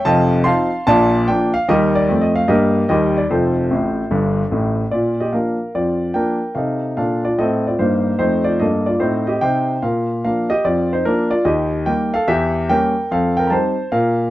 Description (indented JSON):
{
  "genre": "jazz, stride piano",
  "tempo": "147 BPM",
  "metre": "4/4",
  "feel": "swing 66% on 8ths",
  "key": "Bb major",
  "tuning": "A4 = 439 Hz",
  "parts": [
    { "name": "clear grand piano", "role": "solo", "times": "0.0-14.3 s", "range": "F1 to C6", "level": "-15 LUFS", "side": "equal", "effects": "none" }
  ],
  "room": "moderate booth ambience, RT60 0.2 s",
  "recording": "dry, close 1970s-style studio recording",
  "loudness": "-15 LUFS",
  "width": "side -15 dB against mid",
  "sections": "0.0-4.9 A section; 4.9-14.3 B section",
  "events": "grand piano fill 3.7-4.9",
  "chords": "0.1 F7; 0.9 Bb; 1.7 Eb; 3.3 F; 4.9 Bb; 6.6 F7; 9.8 Bb; 11.5 Eb; 12.3 Edim7; 13.1 F9"
}